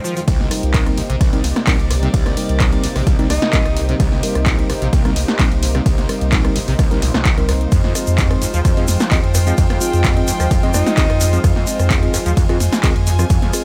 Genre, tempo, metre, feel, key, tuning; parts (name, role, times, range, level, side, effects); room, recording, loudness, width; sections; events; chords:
acid house; 129 BPM; 4/4; straight; C minor; A4 = 441 Hz
lush unison pad; sustained chords; 0.0-13.6 s; F2 to Eb4; -30 LUFS; equal; chorus, sidechain pumping
liquid acid bass; riff; 0.0-13.5 s; Bb1 to F3; -26 LUFS; equal; overdrive, lush chorus
egg shaker; percussion; 0.0-0.3, 7.7-13.6 s; -29 LUFS; equal
rich chamber string section; texture; 0.0-13.6 s; C4 to Ab5; -29 LUFS; equal; sidechain pumping
punchy analog drum machine; drums; 0.2-13.6 s; handclaps, hi-hat, ride cymbal, rim click, snare drum; -25 LUFS; equal; overdrive
warm sub bass; bass; 0.3-13.4 s; Bb1 to F2; -20 LUFS; equal; sidechain pumping
electronic kick drum; drums; 0.3-13.4 s; -19 LUFS; equal; overdrive
mellow tine electric piano; stabs; 0.5-13.6 s; G3 to Eb5; -27 LUFS; equal; phaser, dub echo
breathy alto saxophone; melody; 3.3-4.0, 10.7-11.4 s; Eb4; -27 LUFS; equal; tape echo
digital ambience; -16 LUFS; mono
0.3-13.6 A section
drop 0.3-13.6
0.3 Cm7; 7.7 Fm7